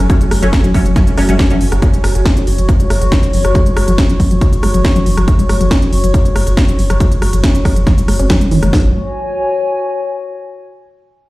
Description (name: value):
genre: driving peak-time techno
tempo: 139 BPM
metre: 4/4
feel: straight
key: F# minor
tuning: A4 = 441 Hz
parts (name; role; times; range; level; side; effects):
- saturated sub bass; bass; 0.0-8.9 s; F#1; -15 LUFS; equal; sidechain pumping, low-pass filter
- warbly tape-like pad; texture; 0.0-10.4 s; F#4 to C#6; -20 LUFS; left 2 dB; chorus, built-in reverb, sidechain pumping
- resonant blip pluck; riff; 0.1-8.9 s; E3 to F#4; -19 LUFS; equal; phaser, tube saturation, sidechain pumping, dub echo
- filtered dub chord stab; stabs; 0.1-1.6 s; F#3 to C#4; -19 LUFS; equal; phaser, ensemble chorus, cassette tape, sidechain pumping, dub echo
- techno drum kit; drums; 0.1-8.8 s; kick drum, snare drum; -12 LUFS; equal; overdrive, studio ambience
- techno drum kit; drums; 0.1-8.7 s; hi-hat, rim click, snare drum; -20 LUFS; equal; overdrive, studio ambience
room: light reverb, digital ambience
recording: played on a big sound system in a bare room, large studio reverb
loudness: -10 LUFS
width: side -19 dB against mid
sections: 0.0-8.7 A section; 8.7-10.5 B section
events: none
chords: 0.0 F#m; 8.7 F#5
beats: | 0.10 0.53 0.96 1.39 | 1.82 2.25 2.69 3.12 | 3.55 3.98 4.41 4.84 | 5.28 5.71 6.14 6.57 | 7.00 7.43 7.87 8.30 | 8.73 9.16 9.59 10.03